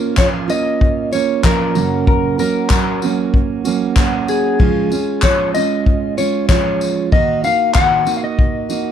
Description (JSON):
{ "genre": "acoustic pop", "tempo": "95 BPM", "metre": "4/4", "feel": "straight", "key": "Db major", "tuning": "A4 = 440 Hz", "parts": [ { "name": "mellow electric guitar", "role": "melody", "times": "0.0-8.9 s", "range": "Ab4 to Gb5", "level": "-18 LUFS", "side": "left 4 dB", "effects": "lush chorus" }, { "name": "picked steel-string acoustic guitar", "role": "accompaniment", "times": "0.0-8.9 s", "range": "Gb2 to Gb4", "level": "-18 LUFS", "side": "right 8 dB", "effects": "none" }, { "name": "unplugged drum kit", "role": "drums", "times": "0.2-8.8 s", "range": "handclaps, kick drum, tambourine", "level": "-17 LUFS", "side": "left 1 dB", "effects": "none" }, { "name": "tambourine", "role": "percussion", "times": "0.2-7.9 s", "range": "none", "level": "-32 LUFS", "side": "left 19 dB", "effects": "none" } ], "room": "light reverb", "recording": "none", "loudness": "-13 LUFS", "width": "side -9 dB against mid", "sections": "0.0-8.9 A section", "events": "none", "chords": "0.0 Bbm; 1.8 Gb; 4.6 Db; 7.1 Ebm", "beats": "0.17 0.80 1.44 | 2.07 2.70 3.33 3.96 | 4.60 5.23 5.86 6.49 | 7.12 7.75 8.39" }